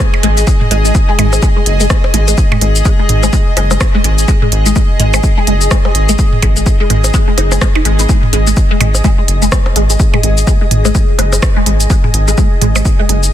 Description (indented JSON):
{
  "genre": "minimal techno",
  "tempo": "126 BPM",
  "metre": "4/4",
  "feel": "swing 59% on 16ths",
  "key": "unclear",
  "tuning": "A4 = 442 Hz",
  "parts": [
    { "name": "resonant blip pluck", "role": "riff", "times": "0.0-13.1 s", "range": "G#3 to D#4", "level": "-18 LUFS", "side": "left 1 dB", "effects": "phaser, ensemble chorus, vintage 12-bit sampler grit, sidechain pumping, tape echo" },
    { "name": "electronic kick drum", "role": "drums", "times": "0.0-13.0 s", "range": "none", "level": "-12 LUFS", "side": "equal", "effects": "none" },
    { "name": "techno drum kit", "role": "drums", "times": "0.0-13.3 s", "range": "hi-hat, rim click, shaker", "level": "-18 LUFS", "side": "left 1 dB", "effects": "soft clipping on snare" },
    { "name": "granular cloud pad", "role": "texture", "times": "0.0-13.3 s", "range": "G#4 to G#5", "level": "-19 LUFS", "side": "left 1 dB", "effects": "built-in reverb, sidechain pumping" },
    { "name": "electronic percussion blips and toms", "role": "percussion", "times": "0.1-12.8 s", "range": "none", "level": "-19 LUFS", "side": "right 2 dB", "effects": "overdrive, digital delay" },
    { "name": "rubbery square bass", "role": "bass", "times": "0.2-13.3 s", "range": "F#1 to G#1", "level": "-12 LUFS", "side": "equal", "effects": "sidechain pumping" }
  ],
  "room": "digital ambience",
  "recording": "dense, heavily limited modern master",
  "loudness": "-9 LUFS",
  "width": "side -11 dB against mid",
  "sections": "0.0-13.3 A section",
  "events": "none",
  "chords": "0.0 G#5"
}